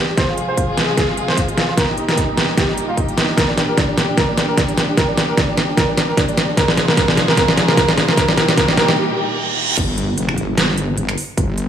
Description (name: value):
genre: heavy wobble dubstep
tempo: 150 BPM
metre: 4/4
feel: swing 55% on 16ths, half-time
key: G phrygian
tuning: A4 = 442 Hz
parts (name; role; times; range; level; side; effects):
- clear baby grand piano; melody; 0.0-8.9 s; D4 to C5; -21 LUFS; right 1 dB; tape echo
- warm studio string section; sustained chords; 0.0-9.8 s; Bb2 to Ab4; -22 LUFS; left 1 dB; sidechain pumping
- dubstep drum kit; drums; 0.2-11.7 s; crash cymbal, finger snaps, hi-hat, snare drum; -17 LUFS; equal; none
- electronic kick drum; drums; 0.2-11.5 s; none; -22 LUFS; equal; none
- riser, reverse cymbal and impact; sound effects; 5.7-11.4 s; none; -25 LUFS; right 2 dB; none
- wobble bass; bass; 9.8-11.7 s; F1 to G1; -20 LUFS; equal; chorus, overdrive
room: moderate lush hall reverb, RT60 2.2 s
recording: small room reverb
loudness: -14 LUFS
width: side -9 dB against mid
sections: 0.0-9.8 A section; 9.8-11.7 B section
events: build-up 0.0-9.8; drum fill 0.0-9.0; break 9.0-9.8; reverse cymbal 9.0-9.8; drop 9.8-11.7; impact 9.8-11.4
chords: 0.2 Fm; 1.8 Eb; 3.4 Gm; 6.6 Fm; 8.2 Eb; 9.8 G5